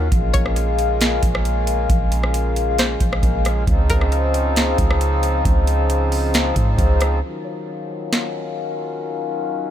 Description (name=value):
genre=hip hop, atmospheric cloud-rap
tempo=135 BPM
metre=4/4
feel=half-time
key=unclear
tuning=A4 = 440 Hz
part: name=pedal harmonium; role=sustained chords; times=0.0-9.7 s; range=Db3 to F4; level=-22 LUFS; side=left 2 dB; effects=stereo widening, sidechain pumping, low-pass filter
part: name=soft 808-style bass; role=bass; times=0.0-7.2 s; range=Bb1 to Ab2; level=-20 LUFS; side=right 1 dB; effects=none
part: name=booming analog drum machine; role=drums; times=0.1-8.2 s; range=hi-hat, kick drum, rim click, snare drum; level=-20 LUFS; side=right 1 dB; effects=none
part: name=string-like resonator pluck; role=melody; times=0.3-4.1, 7.4-7.7 s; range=Bb4 to Db5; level=-28 LUFS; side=left 1 dB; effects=chorus, low-pass filter, tape echo
room=little or no reverb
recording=none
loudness=-16 LUFS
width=side -10 dB against mid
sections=0.0-7.2 A section; 7.2-9.7 B section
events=filter sweep 7.2-9.7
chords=0.1 Bbm7; 3.7 Dbmaj9; 7.2 Ebm9